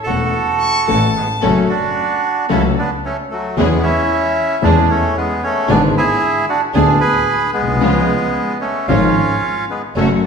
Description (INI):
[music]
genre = tango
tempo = 112 BPM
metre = 4/4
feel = rubato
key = F# minor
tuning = A4 = 439 Hz
[part]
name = bandoneon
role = melody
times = 0.0-10.1 s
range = F#3 to B4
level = -16 LUFS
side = right 2 dB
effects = none
[part]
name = warm concert grand piano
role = accompaniment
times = 0.1-10.2 s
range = D1 to A4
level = -18 LUFS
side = left 4 dB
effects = none
[part]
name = rich symphonic string section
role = stabs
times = 0.1-10.2 s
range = G#3 to A4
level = -25 LUFS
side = right 2 dB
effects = none
[part]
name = rich double bass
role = bass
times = 0.1-10.2 s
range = E1 to E2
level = -21 LUFS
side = right 2 dB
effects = none
[part]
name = clear violin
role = second line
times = 0.6-1.4 s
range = A5 to C#6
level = -20 LUFS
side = left 3 dB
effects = none
[sound]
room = wet recital hall reverb, RT60 1.6 s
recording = recorded in a church or concert hall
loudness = -13 LUFS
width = side -6 dB against mid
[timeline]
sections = 0.0-1.4 A section; 1.4-10.3 B section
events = none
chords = 0.0 A; 1.4 F#m; 3.6 C#m/E; 5.7 G#dim; 7.8 C#